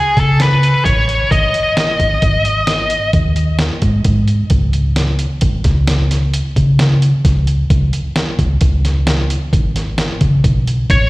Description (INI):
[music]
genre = progressive instrumental, band music in an uneven meter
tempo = 131 BPM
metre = 7/4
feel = straight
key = unclear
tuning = A4 = 439 Hz
[part]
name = high-gain lead guitar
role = melody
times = 0.0-3.1, 10.9-11.1 s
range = G#4 to D#5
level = -15 LUFS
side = left 1 dB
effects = distortion, slapback echo, ping-pong delay
[part]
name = hollow-body short-scale fingered electric bass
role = bass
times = 0.2-11.1 s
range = G#1 to C#3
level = -14 LUFS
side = equal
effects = none
[part]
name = lo-fi sampler-style drum kit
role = drums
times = 0.2-11.0 s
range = hi-hat, kick drum, snare drum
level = -16 LUFS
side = equal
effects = overdrive
[sound]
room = light reverb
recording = live gig heard through the venue's PA, recital hall reverb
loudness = -12 LUFS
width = side -20 dB against mid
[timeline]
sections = 0.0-10.9 A section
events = none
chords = 0.0 C#5; 1.3 G#5; 4.5 C#5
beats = 0.40 0.85 | 1.31 1.77 2.23 2.68 3.14 3.60 4.05 | 4.51 4.96 5.42 5.88 6.33 6.79 7.25 | 7.70 8.16 8.62 9.07 9.53 9.98 10.44 | 10.90